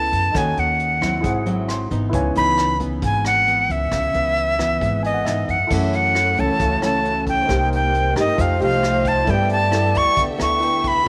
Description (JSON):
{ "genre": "bossa nova", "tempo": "134 BPM", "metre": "4/4", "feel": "straight", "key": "C# minor", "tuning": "A4 = 440 Hz", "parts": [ { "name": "breathy bright jazz flute", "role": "melody", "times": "0.0-11.1 s", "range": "Eb5 to C#6", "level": "-22 LUFS", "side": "equal", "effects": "none" }, { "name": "nylon-string guitar", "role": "accompaniment", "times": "0.0-11.1 s", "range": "F#2 to A4", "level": "-27 LUFS", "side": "equal", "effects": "none" }, { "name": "warm grand piano", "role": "accompaniment", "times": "0.0-11.1 s", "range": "D#4 to B#5", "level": "-31 LUFS", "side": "equal", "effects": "none" }, { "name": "upright bass", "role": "bass", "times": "0.0-11.0 s", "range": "G#1 to G#2", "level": "-26 LUFS", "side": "equal", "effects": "none" }, { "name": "vintage brush drum kit", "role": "drums", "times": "0.1-10.9 s", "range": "crash cymbal, hi-hat, kick drum, rim click", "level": "-32 LUFS", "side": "equal", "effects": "none" }, { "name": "mellow hollow alto flute", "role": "second line", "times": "5.7-10.8 s", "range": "A4 to D5", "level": "-29 LUFS", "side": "equal", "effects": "none" }, { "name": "warm symphonic string section", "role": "sustained chords", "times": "5.7-11.1 s", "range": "A3 to E5", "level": "-33 LUFS", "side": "equal", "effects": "none" } ], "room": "light reverb, studio reverb", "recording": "none", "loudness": "-19 LUFS", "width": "mono", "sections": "0.0-5.7 A section; 5.7-11.1 B section", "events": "grand piano fill 1.5-2.1, 4.8-5.7", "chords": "0.3 D#m7b5; 1.2 G#7b13; 2.1 C#m9; 5.7 F#m7; 7.5 Cm7; 8.4 F9; 9.3 G69" }